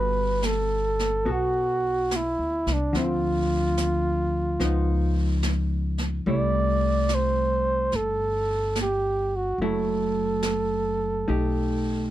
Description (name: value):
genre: jazz ballad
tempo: 72 BPM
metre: 4/4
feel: swing 68% on 8ths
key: G major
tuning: A4 = 440 Hz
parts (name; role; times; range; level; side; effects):
- mellow flugelhorn; melody; 0.0-12.1 s; D4 to D5; -25 LUFS; right 1 dB; none
- hollow-body jazz guitar; accompaniment; 0.0-12.1 s; D3 to A4; -29 LUFS; left 1 dB; none
- upright bass; bass; 0.0-12.1 s; F#1 to D2; -28 LUFS; equal; none
- jazz brush drum kit; drums; 0.4-12.1 s; brushed snare drum, hi-hat, snare drum; -34 LUFS; right 2 dB; none
room: little or no reverb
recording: none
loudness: -22 LUFS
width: side -13 dB against mid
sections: 0.0-12.1 A section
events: none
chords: 0.0 Gmaj9; 2.9 Dm7; 4.6 C#9; 6.3 C6; 9.6 F#m7; 11.3 Baug7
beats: 0.43 1.26 2.10 | 2.94 3.77 4.59 5.43 | 6.26 7.09 7.92 8.75 | 9.59 10.42 11.27